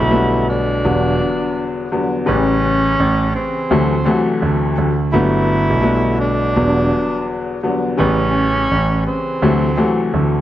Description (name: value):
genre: hip hop, boom-bap hip-hop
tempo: 84 BPM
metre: 4/4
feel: swing 57% on 16ths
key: G major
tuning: A4 = 435 Hz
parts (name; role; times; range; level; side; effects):
- breathy tenor saxophone; melody; 0.0-10.1 s; C4 to E4; -20 LUFS; right 1 dB; high-pass filter, low-pass filter, ping-pong delay
- dark upright piano; accompaniment; 0.0-10.4 s; D2 to B4; -18 LUFS; left 2 dB; high-pass filter, low-pass filter
- dark concert grand piano; bass; 0.0-10.4 s; E1 to D2; -18 LUFS; right 2 dB; none
room: light reverb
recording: none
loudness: -14 LUFS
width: side -13 dB against mid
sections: 0.0-10.4 A section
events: none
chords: 0.0 Gmaj7; 0.8 Em9; 2.3 A7; 3.7 D7; 5.1 Gmaj7; 6.6 Em9; 8.0 A7; 9.4 D7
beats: 0.13 0.85 1.56 | 2.28 2.99 3.71 4.42 | 5.13 5.85 6.56 7.28 | 7.99 8.71 9.42 10.13